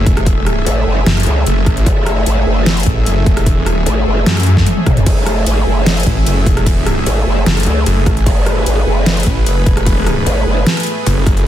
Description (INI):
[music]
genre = heavy wobble dubstep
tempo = 150 BPM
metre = 4/4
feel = half-time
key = F# minor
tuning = A4 = 440 Hz
[part]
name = supersaw pad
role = sustained chords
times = 0.0-11.5 s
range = A3 to E5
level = -19 LUFS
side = equal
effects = sidechain pumping
[part]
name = snarling distorted saw bass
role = bass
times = 0.0-11.4 s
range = E1 to F#2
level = -14 LUFS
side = equal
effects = distortion, overdrive
[part]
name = dubstep drum kit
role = drums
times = 0.1-11.4 s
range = hi-hat, ride cymbal, rim click, snare drum, toms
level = -18 LUFS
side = equal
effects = overdrive
[part]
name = electronic kick drum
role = drums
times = 0.1-11.3 s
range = none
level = -14 LUFS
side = equal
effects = overdrive
[part]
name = growl bass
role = bass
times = 0.7-10.6 s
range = E1 to C#2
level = -14 LUFS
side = equal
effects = chorus, overdrive
[sound]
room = little or no reverb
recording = dense, heavily limited modern master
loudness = -11 LUFS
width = side -12 dB against mid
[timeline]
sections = 0.0-11.5 A section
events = drum fill 4.7-5.1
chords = 0.0 F#madd9